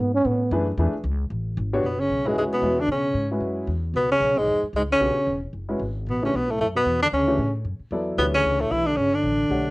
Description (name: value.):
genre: modal jazz.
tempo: 227 BPM.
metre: 4/4.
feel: swing 58% on 8ths.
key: F# minor.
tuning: A4 = 440 Hz.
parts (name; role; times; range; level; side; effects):
breathy trombone; second line; 0.0-9.7 s; G#2 to C#4; -27 LUFS; right 1 dB; none.
upright bass; bass; 0.0-9.7 s; E1 to B2; -28 LUFS; equal; none.
warm concert grand piano; accompaniment; 0.5-9.6 s; E3 to F#5; -26 LUFS; left 1 dB; none.
breathy tenor saxophone; melody; 1.9-9.7 s; G#3 to E4; -22 LUFS; equal; cassette tape.
room: moderate studio reverb, RT60 0.6 s.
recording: home recording on cassette.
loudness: -21 LUFS.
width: side -22 dB against mid.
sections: 0.0-1.8 A section; 1.8-9.7 B section.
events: trombone solo 0.0-1.8.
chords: 0.0 B9sus4; 1.8 F#9sus4; 6.1 A9sus4.